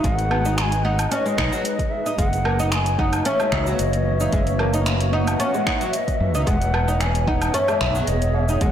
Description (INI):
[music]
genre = organic downtempo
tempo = 112 BPM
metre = 4/4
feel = swing 53% on 16ths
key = unclear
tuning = A4 = 441 Hz
[part]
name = hollow bansuri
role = melody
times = 0.0-8.7 s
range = D#5 to A#5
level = -27 LUFS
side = equal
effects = digital delay
[part]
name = granular cloud pad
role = sustained chords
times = 0.0-8.7 s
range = E3 to E5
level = -27 LUFS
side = left 1 dB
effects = built-in reverb, sidechain pumping
[part]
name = oud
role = arpeggios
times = 0.0-8.7 s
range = F#3 to D#4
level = -25 LUFS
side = equal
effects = tape echo
[part]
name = fretless electric bass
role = bass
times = 0.0-8.7 s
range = E1 to F#2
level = -22 LUFS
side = equal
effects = lush chorus, sidechain pumping
[part]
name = deep house drum kit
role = drums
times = 0.0-8.7 s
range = cabasa, finger snaps, hi-hat, woodblock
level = -28 LUFS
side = equal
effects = overdrive, soft clipping on snare
[part]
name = electronic kick drum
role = drums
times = 0.0-8.7 s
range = none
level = -25 LUFS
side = equal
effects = overdrive
[part]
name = tabla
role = percussion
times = 6.6-8.6 s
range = none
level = -32 LUFS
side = right 3 dB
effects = none
[sound]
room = moderate scoring stage reverb, RT60 1.7 s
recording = blown-out, overdriven recording, overdrive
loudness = -18 LUFS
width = side -10 dB against mid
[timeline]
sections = 0.0-8.7 A section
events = none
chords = 0.0 G#m7; 2.2 F#7; 6.5 E6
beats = | 0.04 0.58 1.11 1.65 | 2.18 2.72 3.26 3.79 | 4.33 4.86 5.40 5.93 | 6.47 7.01 7.54 8.08 | 8.61